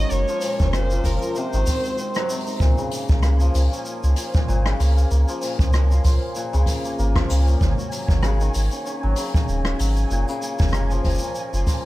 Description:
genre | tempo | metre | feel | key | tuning
folktronica | 96 BPM | 4/4 | swing 56% on 16ths | Db major | A4 = 436 Hz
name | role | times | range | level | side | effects
warm violin | melody | 0.0-2.3 s | Bb4 to Eb5 | -27 LUFS | equal | digital delay
warbly tape-like pad | sustained chords | 0.0-2.6 s | Ab3 to C5 | -34 LUFS | equal | chorus, built-in reverb, phaser
hammered dulcimer | arpeggios | 0.0-11.9 s | Bb2 to Gb4 | -27 LUFS | left 2 dB | digital delay
warm sub bass | bass | 0.0-11.6 s | Eb1 to Db2 | -19 LUFS | equal | none
jazz brush drum kit | drums | 0.1-11.8 s | hi-hat, rim click, shaker | -31 LUFS | left 1 dB | none
kick drum | drums | 0.6-11.8 s | none | -22 LUFS | equal | none
flickering grainy texture | texture | 2.9-11.9 s | Ab5 | -37 LUFS | right 3 dB | built-in reverb
room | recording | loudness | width
small room reverb | none | -18 LUFS | side -17 dB against mid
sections
0.0-2.6 A section; 2.6-11.9 A section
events
break 2.0-2.6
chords
0.1 Gbmaj7; 1.4 Ab7; 2.6 Db6; 7.6 Ab7sus4; 10.1 Gbmaj7

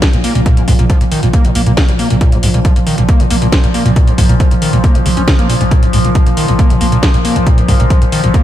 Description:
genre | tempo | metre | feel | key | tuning
driving peak-time techno | 137 BPM | 4/4 | straight | unclear | A4 = 441 Hz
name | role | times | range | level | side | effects
overdriven acid bass | riff | 0.0-8.4 s | Bb1 to Db4 | -15 LUFS | equal | distortion, wide subtle chorus, sidechain pumping, ping-pong delay
overtone-sweeping drone | drone | 0.0-8.4 s | Bb2 to F3 | -18 LUFS | equal | chorus, built-in reverb, sidechain pumping
electronic kick drum | drums | 0.0-8.4 s | none | -11 LUFS | equal | none
techno drum kit | drums | 0.0-8.4 s | hi-hat, snare drum | -20 LUFS | equal | none
growling 808-style bass | bass | 0.1-8.3 s | Bb1 | -18 LUFS | equal | tube saturation, sidechain pumping, low-pass filter
room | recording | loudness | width
light reverb | none | -9 LUFS | side -12 dB against mid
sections
0.0-8.4 A section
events
none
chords
0.0 Bb5

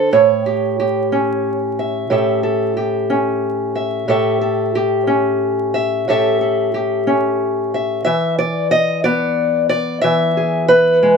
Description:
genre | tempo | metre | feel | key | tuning
acoustic country blues, solo or duo | 60 BPM (dotted quarters) | 12/8 | straight | A mixolydian | A4 = 440 Hz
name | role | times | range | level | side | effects
fingerpicked steel-string acoustic guitar | solo | 0.0-11.2 s | A2 to E5 | -14 LUFS | equal | none
room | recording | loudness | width
light reverb | vinyl crackle | -15 LUFS | side -5 dB against mid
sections
0.0-11.2 A section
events
none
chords
0.1 A7; 8.1 E7

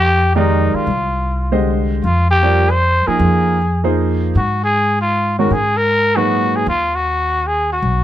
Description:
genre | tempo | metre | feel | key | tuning
jazz | 155 BPM | 3/4 | swing 66% on 8ths | F dorian | A4 = 439 Hz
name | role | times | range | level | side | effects
growling trumpet | melody | 0.0-8.0 s | Eb4 to C5 | -16 LUFS | left 1 dB | none
upright bass | bass | 0.0-8.0 s | Cb2 to Ab2 | -18 LUFS | equal | none
clear baby grand piano | accompaniment | 0.4-6.7 s | Bb2 to Eb5 | -18 LUFS | right 2 dB | none
room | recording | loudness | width
light reverb | close, detailed microphones | -13 LUFS | side -12 dB against mid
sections
0.0-8.0 A section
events
none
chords
0.0 Fm9; 4.4 Abm9

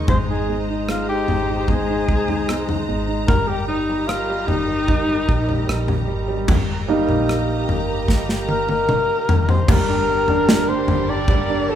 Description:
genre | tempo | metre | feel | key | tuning
pop ballad | 75 BPM | 4/4 | straight | Eb major | A4 = 439 Hz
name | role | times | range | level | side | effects
clear baby grand piano | accompaniment | 0.0-11.8 s | Db3 to Ab4 | -24 LUFS | right 2 dB | none
warm studio string section | sustained chords | 0.0-11.8 s | D3 to Bb5 | -28 LUFS | equal | none
vintage muted fingered electric bass | bass | 0.0-11.8 s | F1 to C2 | -26 LUFS | equal | none
breathy alto saxophone | melody | 0.1-11.8 s | Eb4 to D5 | -22 LUFS | left 2 dB | none
modern studio drum kit | drums | 0.1-11.5 s | crash cymbal, kick drum, rim click, snare drum, toms | -20 LUFS | left 1 dB | none
room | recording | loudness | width
moderate large studio reverb, RT60 1.1 s | band playing live in one room | -17 LUFS | side -10 dB against mid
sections
0.0-6.5 A section; 6.5-9.7 B section; 9.7-11.8 C section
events
grand piano solo 6.5-9.7; drum fill 8.1-9.7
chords
0.1 Abadd9; 3.3 Eb/G; 9.7 Gm

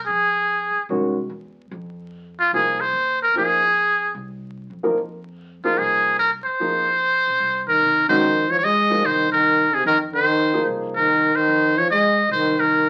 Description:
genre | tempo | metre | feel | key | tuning
modal jazz | 148 BPM | 4/4 | swing 66% on 8ths | F minor | A4 = 437 Hz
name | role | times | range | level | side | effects
upright bass | bass | 0.0-12.9 s | C2 to C3 | -42 LUFS | equal | none
trumpet with metal mute | melody | 0.1-12.9 s | F4 to Eb5 | -20 LUFS | equal | none
warm baby grand piano | accompaniment | 0.9-11.1 s | Eb3 to Bb4 | -26 LUFS | equal | none
breathy trombone | second line | 7.7-12.9 s | C3 to Ab3 | -24 LUFS | equal | none
room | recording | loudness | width
wet studio reverb, RT60 0.6 s | very old 78 rpm record, vinyl crackle | -19 LUFS | mono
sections
0.0-12.9 A section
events
none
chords
0.0 Fm7

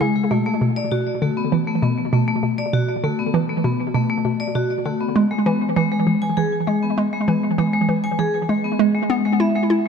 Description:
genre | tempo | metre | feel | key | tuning
ambient, sequencer-driven space music | 99 BPM | 4/4 | straight | B dorian | A4 = 442 Hz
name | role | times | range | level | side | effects
vibraphone with hard mallets | arpeggios | 0.0-9.9 s | G#3 to G#5 | -21 LUFS | left 3 dB | auto-pan, tape echo, shimmer reverb
hollow square pluck | riff | 0.0-9.9 s | B2 to E4 | -20 LUFS | right 2 dB | chorus, tape echo
room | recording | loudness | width
wet plate reverb, RT60 2.7 s | none | -18 LUFS | side -6 dB against mid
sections
0.0-9.9 A section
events
filter sweep on synth arpeggio sound 0.0-9.9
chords
0.3 Bm7; 5.2 E

